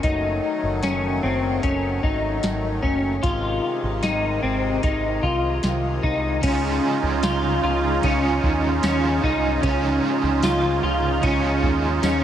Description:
dream pop; 75 BPM; 4/4; straight; Db major; A4 = 439 Hz
musette accordion; sustained chords; 0.0-12.2 s; C3 to F4; -27 LUFS; right 2 dB
electric guitar at the edge of break-up; arpeggios; 0.0-12.2 s; C4 to F4; -23 LUFS; left 2 dB; ensemble chorus, digital delay
picked electric bass; bass; 0.0-12.2 s; Gb1 to Eb2; -26 LUFS; equal
soft vintage rhythm box; drums; 0.0-12.2 s; crash cymbal, hi-hat, kick drum, ride cymbal, snare drum, tambourine; -26 LUFS; equal
crunchy overdriven guitar; accompaniment; 6.4-12.2 s; Db3 to Ab4; -26 LUFS; right 4 dB; tremolo, ensemble chorus
moderate shimmer reverb, RT60 5.9 s; -19 LUFS; side -10 dB against mid
0.0-6.4 A section; 6.4-12.2 B section
0.0 Gbm; 3.2 Ab; 6.4 Dbadd9

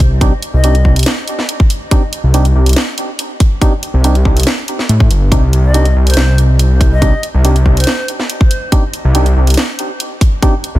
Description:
deep dubstep; 141 BPM; 4/4; half-time; C dorian; A4 = 435 Hz
dark detuned saw bass; bass; 0.0-10.8 s; G1 to A2; -9 LUFS; equal
electronic kick drum; drums; 0.0-10.5 s; -10 LUFS; equal; studio reverb
garage drum kit; drums; 0.0-10.7 s; hi-hat, snare drum; -18 LUFS; equal; studio reverb
percussive organ stab; stabs; 0.2-10.5 s; C4 to G4; -21 LUFS; right 2 dB; chorus, dub echo
bright reedy long shakuhachi; melody; 0.5-1.0, 5.6-8.1 s; C5 to Eb5; -24 LUFS; left 2 dB; dub echo
little or no reverb; dense, heavily limited modern master; -10 LUFS; side -16 dB against mid
0.0-10.8 A section
0.0 Cmadd9

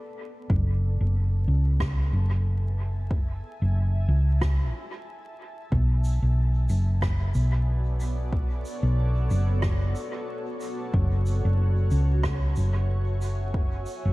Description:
ambient dub; 92 BPM; 4/4; swing 55% on 16ths; B dorian; A4 = 439 Hz
granular cloud pad; sustained chords; 0.0-14.1 s; B3 to A5; -37 LUFS; equal; built-in reverb
hollow-body short-scale fingered electric bass; bass; 0.5-14.1 s; F#1 to C#2; -22 LUFS; equal; tube saturation
electronic kick drum; drums; 0.5-13.7 s; -28 LUFS; equal; overdrive
rim click and shaker; drums; 1.8-14.0 s; -38 LUFS; right 1 dB; dub echo
studio ambience; echo-heavy mix, vinyl crackle; -23 LUFS; side -20 dB against mid
0.0-14.1 A section
fade-in on ambient pad 0.0-14.1
0.0 Bm7; 0.5 F#m7; 5.7 Bm7; 10.9 F#m7

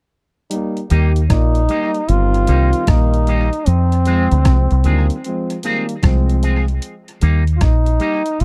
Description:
roots reggae; 76 BPM; 4/4; swing 65% on 16ths; Eb major; A4 = 439 Hz
warm trombone section; second line; 0.5-6.6 s; Eb3 to D5; -25 LUFS; equal; tape echo
dusty soul sampler-style drum kit; drums; 0.5-8.4 s; hi-hat, kick drum, rim click; -21 LUFS; equal
electric guitar with an envelope filter; accompaniment; 0.9-8.2 s; G3 to Ab4; -27 LUFS; equal; subtle chorus, tape echo
deep dub fingered electric bass; bass; 0.9-8.4 s; G1 to F2; -16 LUFS; equal
bright trombone; melody; 1.3-8.4 s; C4 to F4; -22 LUFS; equal; tape echo
little or no reverb; dry, close 1970s-style studio recording; -16 LUFS; mono
0.5-8.4 A section
0.5 Eb; 3.7 Fm; 6.8 Eb

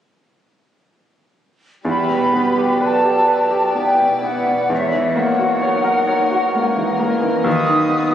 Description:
classical; 65 BPM; 3/4; rubato; A4 = 440 Hz
bright concert grand piano; melody; 1.8-8.1 s; D#2 to C#5; -18 LUFS; equal
dark chamber violin section; second line; 1.9-8.1 s; G4 to D#5; -25 LUFS; left 2 dB
flute section; second line; 1.9-8.1 s; E5 to D#6; -19 LUFS; equal
dark symphonic viola section; accompaniment; 1.9-8.1 s; E3 to F#4; -28 LUFS; right 2 dB
moderate scoring stage reverb, RT60 1.6 s; recorded on a phone in the room, club reverb; -15 LUFS; side -10 dB against mid
1.9-8.1 A section
1.9 Em; 4.7 F#7/E; 7.5 B/D#

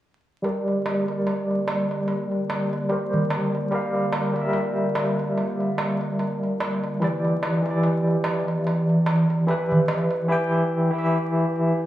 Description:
trip hop; 73 BPM; 4/4; swing 57% on 16ths; G dorian; A4 = 441 Hz
barky tine electric piano; accompaniment; 0.4-11.9 s; E3 to G5; -22 LUFS; equal; overdrive, tremolo, low-pass filter, tape echo
warbly tape-like pad; sustained chords; 0.4-10.3 s; D3 to D5; -28 LUFS; right 1 dB; chorus, built-in reverb
darbuka; percussion; 0.4-10.3 s; -29 LUFS; right 1 dB
wet spring reverb, RT60 1.3 s, small room ambience; worn, warbling old tape, cassette tape, vinyl crackle, warbly pitch drift, studio reverb; -21 LUFS; side -13 dB against mid
0.4-11.9 A section
filter sweep on tine electric piano 0.4-11.9; filter sweep on ambient pad 0.4-11.9
0.4 Gm; 7.0 Em7

